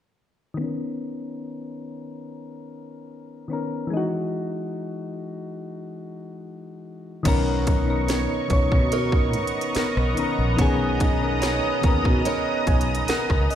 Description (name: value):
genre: contemporary R&B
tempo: 72 BPM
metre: 4/4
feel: straight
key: B major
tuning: A4 = 442 Hz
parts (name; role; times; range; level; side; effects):
- soft electric-piano-like synth keys; accompaniment; 0.5-13.6 s; D#3 to G#5; -27 LUFS; left 3 dB; chorus, low-pass filter
- lush unison pad; sustained chords; 7.3-13.6 s; B3 to D#6; -27 LUFS; equal; chorus
- nylon-string guitar; arpeggios; 7.3-13.6 s; B3 to C#5; -29 LUFS; right 8 dB; tape echo
- mellow fretless electric bass; bass; 7.3-13.5 s; A#1 to B2; -25 LUFS; right 1 dB; ensemble chorus
- trap drum kit; drums; 7.3-13.6 s; crash cymbal, hi-hat, kick drum, rim click, snare drum; -23 LUFS; equal; none
room: little or no reverb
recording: played on a big sound system in a bare room, stone room reverb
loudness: -21 LUFS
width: side -10 dB against mid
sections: 0.6-7.3 A section; 7.3-13.6 B section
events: filter sweep on synth keys 0.6-7.3; synth keys fill 12.3-13.6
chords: 0.6 Bmaj9; 3.9 Emaj9; 7.3 Bmaj9